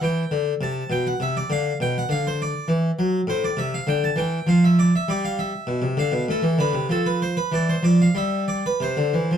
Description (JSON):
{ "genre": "classical, baroque-style suite movement for harpsichord", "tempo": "100 BPM", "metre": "3/4", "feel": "rubato", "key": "unclear", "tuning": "A4 = 439 Hz", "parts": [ { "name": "harpsichord", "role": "solo", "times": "0.0-9.4 s", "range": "A2 to A5", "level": "-20 LUFS", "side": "equal", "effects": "none" } ], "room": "moderate studio reverb, RT60 0.6 s", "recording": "dark, warm production", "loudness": "-20 LUFS", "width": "side -8 dB against mid", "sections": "0.0-9.4 A section", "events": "none", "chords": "0.0 C; 1.5 Bdim; 2.7 Esus2; 3.3 Am; 4.5 N.C.; 5.1 G; 6.3 Am; 6.9 Dm13; 8.1 N.C.; 8.8 C", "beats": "0.30 0.90 | 1.49 2.09 2.68 | 3.27 3.86 4.46 | 5.07 5.67 6.28 | 6.89 7.51 8.15 | 8.80" }